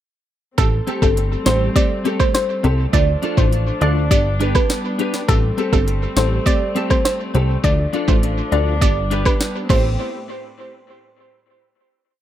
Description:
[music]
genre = dancehall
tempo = 102 BPM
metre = 4/4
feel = straight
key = A minor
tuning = A4 = 440 Hz
[part]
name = soft round pluck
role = melody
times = 0.6-10.0 s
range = A4 to D5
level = -23 LUFS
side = right 1 dB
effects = chorus, tape echo
[part]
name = wavetable chord stab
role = accompaniment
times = 0.6-9.9 s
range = A3 to G4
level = -26 LUFS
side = right 2 dB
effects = tape echo
[part]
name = warm chamber string section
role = sustained chords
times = 0.6-10.0 s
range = A2 to G4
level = -27 LUFS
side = left 1 dB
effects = sidechain pumping
[part]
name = plucky analog bass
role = bass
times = 0.6-10.0 s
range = G1 to D2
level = -19 LUFS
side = equal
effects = none
[part]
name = afro-pop drum kit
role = drums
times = 0.6-9.8 s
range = crash cymbal, hi-hat, kick drum, rim click, snare drum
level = -18 LUFS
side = equal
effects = none
[part]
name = clean electric guitar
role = arpeggios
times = 0.9-9.9 s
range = C4 to C5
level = -25 LUFS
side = left 2 dB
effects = ensemble chorus, tape echo
[sound]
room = light reverb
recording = echo-heavy mix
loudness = -15 LUFS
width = side -12 dB against mid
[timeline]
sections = 0.6-10.0 chorus; 10.0-12.2 final hit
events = none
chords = 0.6 Am7; 2.9 Dm; 4.1 G; 5.3 Am7; 7.6 Dm; 8.8 G; 9.7 Am7; 10.0 N.C.

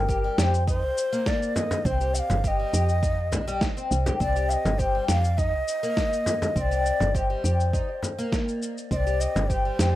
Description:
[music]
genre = organic downtempo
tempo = 102 BPM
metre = 4/4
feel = straight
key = C minor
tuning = A4 = 440 Hz
[part]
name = breathy bright low ney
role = melody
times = 0.0-10.0 s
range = Bb4 to G5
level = -28 LUFS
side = left 1 dB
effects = tape echo, plate reverb
[part]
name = oud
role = arpeggios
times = 0.0-9.9 s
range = G3 to G4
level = -30 LUFS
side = left 2 dB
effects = ping-pong delay, plate reverb
[part]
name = woody FM bass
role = bass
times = 0.0-10.0 s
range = G1 to F2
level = -25 LUFS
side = right 1 dB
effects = tube saturation
[part]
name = electronic cabasa and snare drum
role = drums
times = 0.1-9.9 s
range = none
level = -30 LUFS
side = equal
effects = none
[part]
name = electronic kick drum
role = drums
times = 0.1-9.6 s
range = none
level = -29 LUFS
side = right 1 dB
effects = none
[part]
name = frame drum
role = percussion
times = 1.6-9.5 s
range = none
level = -29 LUFS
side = equal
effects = none
[sound]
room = light reverb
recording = rough home demo mix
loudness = -22 LUFS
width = side -14 dB against mid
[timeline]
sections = 0.0-10.0 A section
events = none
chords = 0.0 Cm

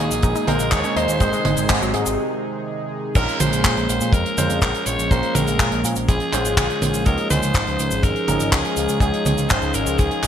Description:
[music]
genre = italo disco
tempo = 123 BPM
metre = 4/4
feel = straight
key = Bb minor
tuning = A4 = 440 Hz
[part]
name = raspy alto saxophone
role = melody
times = 0.0-10.3 s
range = Ab4 to Db5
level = -24 LUFS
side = left 1 dB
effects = ping-pong delay
[part]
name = warm analog pad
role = sustained chords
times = 0.0-10.3 s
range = Bb2 to Ab4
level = -25 LUFS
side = right 1 dB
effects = chorus
[part]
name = analog pluck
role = arpeggios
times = 0.0-2.0 s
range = Gb3 to Ab4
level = -27 LUFS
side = left 1 dB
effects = chorus, ping-pong delay
[part]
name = clear grand piano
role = stabs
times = 0.0-10.2 s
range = F3 to C5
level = -28 LUFS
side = right 2 dB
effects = wide subtle chorus
[part]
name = picked electric bass with an envelope filter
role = bass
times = 0.0-10.3 s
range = Ab1 to Bb2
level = -25 LUFS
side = equal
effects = tube saturation
[part]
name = damped 70s drum kit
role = drums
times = 0.1-10.3 s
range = cabasa, crash cymbal, handclaps, hi-hat, toms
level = -23 LUFS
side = right 1 dB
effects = small room ambience, gated reverb
[part]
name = kick drum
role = drums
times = 0.2-10.1 s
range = none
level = -20 LUFS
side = equal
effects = small room ambience
[sound]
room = moderate plate reverb, RT60 1.4 s, small room ambience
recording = bright 1980s-style digital production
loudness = -17 LUFS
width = side -9 dB against mid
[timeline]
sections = 0.0-3.2 A section; 3.2-10.3 B section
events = break 2.2-3.2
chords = 0.0 Ebsus4; 1.2 Ab; 3.2 Bbm7; 7.1 Dbadd9

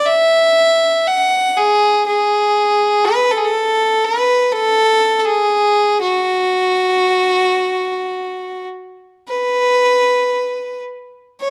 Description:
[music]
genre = celtic folk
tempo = 53-62 BPM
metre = 3/4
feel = rubato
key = unclear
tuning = A4 = 440 Hz
[part]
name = rich fiddle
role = solo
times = 0.0-11.5 s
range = F#4 to F#5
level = -16 LUFS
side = equal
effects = none
[sound]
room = moderate recital hall reverb, RT60 1.4 s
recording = dark, warm production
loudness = -15 LUFS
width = mono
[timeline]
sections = 0.0-9.3 A section; 9.3-11.5 B section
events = none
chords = none

